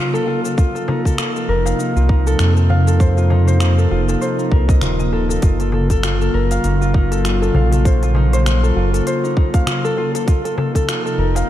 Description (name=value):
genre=organic downtempo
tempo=99 BPM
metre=4/4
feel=swing 57% on 16ths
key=F phrygian dominant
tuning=A4 = 444 Hz
part: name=airy breathy pad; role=sustained chords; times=0.0-11.5 s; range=C3 to F4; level=-22 LUFS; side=right 1 dB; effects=chorus, sidechain pumping
part: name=Celtic harp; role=arpeggios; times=0.0-11.5 s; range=Eb4 to F5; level=-21 LUFS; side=left 2 dB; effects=tape echo
part: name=darbuka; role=percussion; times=0.1-11.5 s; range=none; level=-25 LUFS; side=left 2 dB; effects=none
part: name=organic electronic drum kit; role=drums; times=0.2-11.5 s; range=cabasa, finger snaps, hi-hat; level=-27 LUFS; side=left 1 dB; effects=overdrive
part: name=electronic kick drum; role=drums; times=0.6-10.9 s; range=none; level=-15 LUFS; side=equal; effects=overdrive
part: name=round analog bass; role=bass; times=1.5-11.4 s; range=Eb1 to F2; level=-16 LUFS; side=equal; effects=sidechain pumping
room=light reverb, digital ambience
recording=dark, warm production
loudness=-14 LUFS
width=side -12 dB against mid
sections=0.0-11.5 A section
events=none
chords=0.0 Gbmaj7; 0.6 F7sus4; 5.4 Gbmaj7; 10.3 F7sus4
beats=| 0.58 1.19 1.79 2.40 | 3.00 3.61 4.22 4.82 | 5.43 6.03 6.64 7.25 | 7.85 8.46 9.06 9.67 | 10.28 10.88 11.49